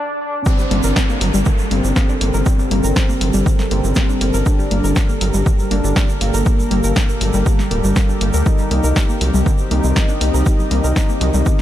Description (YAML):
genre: melodic techno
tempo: 120 BPM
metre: 4/4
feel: straight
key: G minor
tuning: A4 = 438 Hz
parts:
  - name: wide unison lead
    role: melody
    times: 0.0-11.6 s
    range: G3 to Eb4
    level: -23 LUFS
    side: equal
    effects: cassette tape, sidechain pumping, tape echo
  - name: dark analog pad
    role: sustained chords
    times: 0.8-11.6 s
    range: G3 to Eb5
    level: -25 LUFS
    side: equal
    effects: chorus, sidechain pumping
  - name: soft round pluck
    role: arpeggios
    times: 0.5-11.5 s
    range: D3 to Bb4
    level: -26 LUFS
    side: right 1 dB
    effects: chorus, sidechain pumping, analog delay
  - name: electronic kick drum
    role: drums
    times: 0.5-11.6 s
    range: none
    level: -16 LUFS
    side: equal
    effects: high-pass filter on kick
  - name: egg shaker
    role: percussion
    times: 0.5-11.6 s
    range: none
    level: -32 LUFS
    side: right 3 dB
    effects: none
  - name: downlifter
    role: sound effects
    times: 0.5-4.5 s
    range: none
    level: -30 LUFS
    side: equal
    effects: none
  - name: gritty driven synth bass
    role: bass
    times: 0.7-11.4 s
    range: D1 to D2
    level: -17 LUFS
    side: equal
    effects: sidechain pumping
  - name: punchy analog drum machine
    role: drums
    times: 0.7-11.6 s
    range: congas, hi-hat, snare drum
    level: -23 LUFS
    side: left 2 dB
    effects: none
room: light reverb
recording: high-pass filter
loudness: -14 LUFS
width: side -12 dB against mid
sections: 0.5-11.6 A section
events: break 0.0-0.5; drop 0.5-11.6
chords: 0.5 Gmadd9; 8.5 Cm7